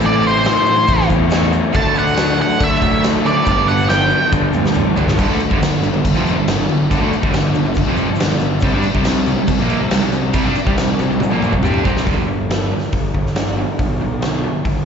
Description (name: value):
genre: classic rock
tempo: 139 BPM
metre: 4/4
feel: straight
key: G major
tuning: A4 = 440 Hz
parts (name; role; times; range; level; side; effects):
- overdriven electric guitar; riff; 0.0-12.1 s; F2 to G4; -22 LUFS; equal; slapback echo
- overdriven semi-hollow guitar; riff; 0.0-14.8 s; F2 to G4; -22 LUFS; right 10 dB; tremolo
- raw garage guitar; riff; 0.0-14.8 s; F2 to G4; -23 LUFS; left 12 dB; overdrive, slapback echo
- fuzz picked electric bass; bass; 0.0-14.8 s; F1 to D3; -20 LUFS; equal; overdrive
- huge arena drum kit; drums; 0.0-14.8 s; crash cymbal, hi-hat, kick drum, snare drum, toms; -19 LUFS; equal; none
- tube shaker; percussion; 0.0-12.0 s; none; -45 LUFS; left 5 dB; none
- octave-fuzz lead guitar; melody; 0.1-4.3 s; C5 to A5; -17 LUFS; right 1 dB; distortion, slapback echo
room: light reverb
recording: live gig heard through the venue's PA, recital hall reverb, nothing above 7.7 kHz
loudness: -14 LUFS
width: side -7 dB against mid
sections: 0.0-5.2 A section; 5.2-12.1 B section; 12.1-14.8 C section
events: drum fill 4.3-5.2, 11.2-12.1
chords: 0.0 Am; 1.7 D; 3.5 G; 5.2 G5; 8.6 C5; 12.1 G